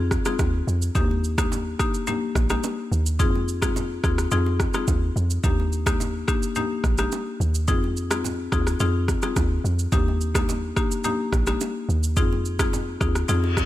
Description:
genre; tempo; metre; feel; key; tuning
afrobeats; 107 BPM; 4/4; straight; Eb major; A4 = 440 Hz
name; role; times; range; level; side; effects
marimba with medium hard mallets; accompaniment; 0.0-13.5 s; Bb3 to Ab4; -27 LUFS; left 4 dB; none
deep log drum bass; bass; 0.0-13.6 s; Bb1 to F2; -24 LUFS; right 1 dB; none
afro-pop drum kit; drums; 0.1-13.7 s; kick drum, rim click, shaker; -25 LUFS; right 1 dB; none
bongos and congas; percussion; 0.1-13.7 s; none; -35 LUFS; right 7 dB; none
reverse cymbal; sound effects; 13.4-13.7 s; none; -28 LUFS; left 5 dB; none
room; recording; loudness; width
little or no reverb; none; -21 LUFS; side -14 dB against mid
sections
0.0-13.7 A section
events
reverse cymbal 13.4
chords
0.0 Fm7; 1.0 Ebmaj7; 3.2 Fm7; 5.4 Ebmaj7; 7.7 Fm7; 9.9 Ebmaj7; 12.2 Fm7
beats
0.39 | 0.95 1.51 2.08 2.63 | 3.20 3.76 4.32 4.88 | 5.44 6.00 6.56 7.12 | 7.68 8.24 8.80 9.36 | 9.93 10.49 11.05 11.61 | 12.17 12.73 13.29

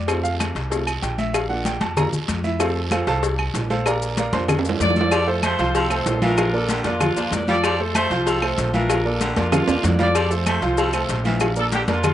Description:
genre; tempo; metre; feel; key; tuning
latin, salsa; 191 BPM; 4/4; straight; F major; A4 = 440 Hz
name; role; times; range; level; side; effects
clear grand piano; accompaniment; 0.0-12.1 s; F3 to C6; -24 LUFS; right 2 dB; slapback echo
upright bass; bass; 0.0-12.1 s; Bb1 to F2; -25 LUFS; equal; none
agogo bells and timbales; percussion; 0.1-12.1 s; none; -28 LUFS; right 6 dB; slapback echo
claves; percussion; 0.1-12.1 s; none; -29 LUFS; left 3 dB; none
congas; percussion; 0.1-12.1 s; none; -28 LUFS; left 3 dB; none
cowbell; percussion; 0.1-12.1 s; none; -27 LUFS; left 7 dB; none
guiro; percussion; 0.1-12.1 s; none; -35 LUFS; right 7 dB; none
maracas; percussion; 0.1-12.1 s; none; -35 LUFS; left 8 dB; none
clear horn section; melody; 4.8-12.1 s; Bb3 to D5; -24 LUFS; equal; none
raspy baritone saxophone; second line; 5.1-12.0 s; D3 to A3; -27 LUFS; equal; slapback echo
room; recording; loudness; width
little or no reverb; recorded outdoors, with no room sound, nothing above 10.5 kHz; -18 LUFS; side -12 dB against mid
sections
0.0-5.1 A section; 5.1-12.1 B section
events
grand piano solo 0.0-5.1; drum fill 4.5-5.1, 9.5-10.2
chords
0.1 F; 1.3 Bb; 2.6 F; 3.9 Bb; 5.1 F; 6.4 Bb; 7.6 F; 8.9 Bb; 10.2 F; 11.4 Bb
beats
| 0.09 0.40 0.72 1.03 | 1.34 1.66 1.97 2.29 | 2.60 2.92 3.23 3.55 | 3.86 4.18 4.49 4.80 | 5.12 5.43 5.75 6.06 | 6.38 6.69 7.01 7.32 | 7.63 7.95 8.26 8.58 | 8.89 9.21 9.52 9.84 | 10.15 10.47 10.78 11.10 | 11.41 11.73 12.04

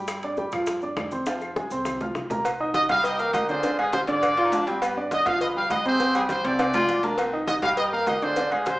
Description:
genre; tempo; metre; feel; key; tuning
latin, salsa; 203 BPM; 4/4; straight; C minor; A4 = 440 Hz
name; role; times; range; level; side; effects
clear concert grand piano; accompaniment; 0.0-8.8 s; C3 to F6; -26 LUFS; right 1 dB; none
upright bass; bass; 0.0-8.8 s; C2 to Ab2; -43 LUFS; equal; none
bongos and cowbell; percussion; 0.1-8.8 s; none; -34 LUFS; left 2 dB; none
claves; percussion; 0.1-8.7 s; none; -41 LUFS; left 2 dB; none
congas; percussion; 0.1-8.8 s; none; -35 LUFS; equal; none
maracas; percussion; 0.1-8.8 s; none; -47 LUFS; left 2 dB; none
timbales and agogo bells; percussion; 0.1-8.8 s; none; -30 LUFS; right 1 dB; none
bright trumpet section; melody; 2.7-8.8 s; F4 to F5; -24 LUFS; equal; none
bright baritone saxophone; second line; 4.4-7.4 s; B3 to F4; -27 LUFS; left 1 dB; none
room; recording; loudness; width
wet large studio reverb, RT60 0.9 s; band playing live in one room, small speaker sound; -22 LUFS; side -19 dB against mid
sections
0.0-2.5 A section; 2.5-8.8 B section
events
drum fill 1.3-2.5, 6.6-7.2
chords
0.1 G5; 1.3 Fm; 2.5 Cm7; 3.6 Ddim; 4.8 G7; 6.0 Fmadd9; 7.2 Cm7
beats
| 0.07 0.37 0.67 0.97 | 1.26 1.56 1.86 2.15 | 2.45 2.75 3.04 3.34 | 3.64 3.93 4.23 4.52 | 4.82 5.11 5.41 5.71 | 6.00 6.30 6.59 6.89 | 7.18 7.48 7.78 8.07 | 8.37 8.66

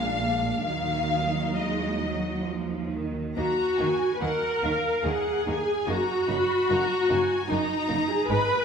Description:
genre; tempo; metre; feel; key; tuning
classical, slow romantic movement for string orchestra; 63-77 BPM; 3/4; rubato; Eb minor; A4 = 439 Hz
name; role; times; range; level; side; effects
rich symphonic violin section; melody; 0.0-8.6 s; Eb5 to Cb6; -31 LUFS; left 4 dB; none
dark symphonic violin section; second line; 0.0-8.4 s; Ab3 to F5; -35 LUFS; left 3 dB; none
warm symphonic viola section; accompaniment; 0.0-8.6 s; Gb3 to Cb5; -26 LUFS; equal; none
rich symphonic cello section; bass; 0.0-8.4 s; Gb2 to Ab3; -32 LUFS; right 3 dB; none
warm symphonic double bass section; bass; 0.0-8.4 s; Gb1 to Eb2; -34 LUFS; right 3 dB; none
room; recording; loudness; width
wet scoring stage reverb, RT60 1.9 s; minimal, uncompressed stereo recording; -24 LUFS; side -6 dB against mid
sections
0.0-3.4 A section; 3.4-8.6 A section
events
none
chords
0.0 Bb7; 0.7 Ebm; 5.9 Ebm/Gb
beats
| 0.66 1.57 2.46 | 3.38 4.22 5.06 | 5.89 6.71 7.51 | 8.31

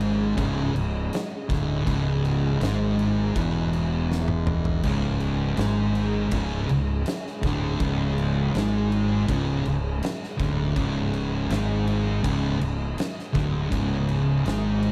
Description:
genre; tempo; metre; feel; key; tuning
stoner and doom metal; 81 BPM; 4/4; straight; C# minor; A4 = 439 Hz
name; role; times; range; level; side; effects
ensemble organ-string; sustained chords; 0.0-14.9 s; G#3 to D#5; -40 LUFS; equal; none
thick fuzz guitar; riff; 0.0-14.9 s; C#2 to G#3; -28 LUFS; equal; distortion
fuzz fingered electric bass; bass; 0.0-14.9 s; C#1 to G#1; -30 LUFS; equal; overdrive
oversized low-tuned drum kit; drums; 0.0-14.9 s; crash cymbal, kick drum, snare drum, toms; -33 LUFS; equal; none
thick fuzz guitar; riff; 4.8-14.9 s; C#2 to G#3; -32 LUFS; equal; distortion
room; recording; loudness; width
small room ambience; none; -25 LUFS; mono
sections
0.0-14.9 A section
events
drum fill 4.1-4.8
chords
0.0 C#m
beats
0.37 1.11 | 1.86 2.60 3.35 4.09 | 4.84 5.58 6.32 7.06 | 7.80 8.54 9.28 10.02 | 10.76 11.50 12.24 12.98 | 13.72 14.45

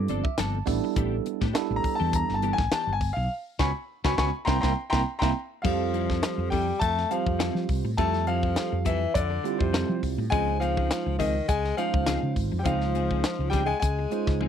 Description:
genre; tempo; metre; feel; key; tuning
electric jazz fusion; 103 BPM; 4/4; swing 54% on 16ths; unclear; A4 = 440 Hz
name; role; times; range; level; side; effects
clear concert grand piano; melody; 0.0-14.5 s; C5 to D6; -30 LUFS; left 2 dB; slapback echo
bell-like tine electric piano; accompaniment; 0.0-14.5 s; G3 to A5; -30 LUFS; right 16 dB; phaser
mellow fretless electric bass; bass; 0.0-14.5 s; G1 to F3; -28 LUFS; equal; analog chorus
clean electric guitar; stabs; 0.1-14.5 s; E3 to A4; -35 LUFS; left 14 dB; analog chorus
tight funk drum kit; drums; 0.1-14.5 s; crash cymbal, hi-hat, kick drum, snare drum, toms; -29 LUFS; left 1 dB; none
clear tenor saxophone; second line; 5.6-14.5 s; C3 to A3; -31 LUFS; left 8 dB; none
room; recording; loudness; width
studio reverb; dry, close 1970s-style studio recording; -24 LUFS; side -8 dB against mid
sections
0.0-5.6 A section; 5.6-14.5 B section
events
tine electric piano fill 0.0-1.0; grand piano solo 0.0-5.6; band accent 3.3-5.6; drum fill 4.5-5.6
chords
0.0 G9sus4; 0.7 A9sus4; 3.3 Db7sus4; 4.5 C7; 5.6 Fmaj9; 10.3 Dbmaj9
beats
0.38 | 0.96 1.55 2.13 2.72 | 3.30 3.89 4.47 5.06 | 5.64 6.23 6.81 7.40 | 7.98 8.57 9.15 9.73 | 10.32 10.90 11.49 12.07 | 12.66 13.24 13.82 14.41

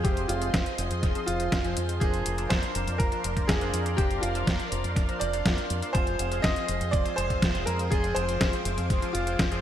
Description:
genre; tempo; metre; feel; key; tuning
italo disco; 122 BPM; 4/4; straight; F dorian; A4 = 441 Hz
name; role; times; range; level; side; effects
clear grand piano; melody; 0.0-9.6 s; F4 to Eb5; -31 LUFS; right 1 dB; digital delay
string machine, full ensemble; sustained chords; 0.0-9.6 s; Ab4 to D6; -36 LUFS; equal; ensemble chorus
chorused polysynth; stabs; 0.0-9.6 s; F3 to C5; -34 LUFS; left 1 dB; cassette tape
fingered electric bass with an envelope filter; bass; 0.0-9.6 s; F1 to F2; -31 LUFS; equal; none
detuned 8-bit digital drum machine; drums; 0.0-9.6 s; hi-hat, snare drum; -31 LUFS; equal; overdrive
electronic kick drum; drums; 0.0-9.5 s; none; -27 LUFS; equal; overdrive
room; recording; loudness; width
light reverb, digital ambience; bright 1980s-style digital production; -24 LUFS; side -11 dB against mid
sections
0.0-9.6 A section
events
none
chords
0.0 Fm; 2.0 Bbadd9/F; 5.9 Fm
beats
| 0.05 0.54 1.03 1.52 | 2.01 2.51 3.00 3.49 | 3.98 4.47 4.96 5.46 | 5.95 6.44 6.93 7.42 | 7.92 8.41 8.90 9.39

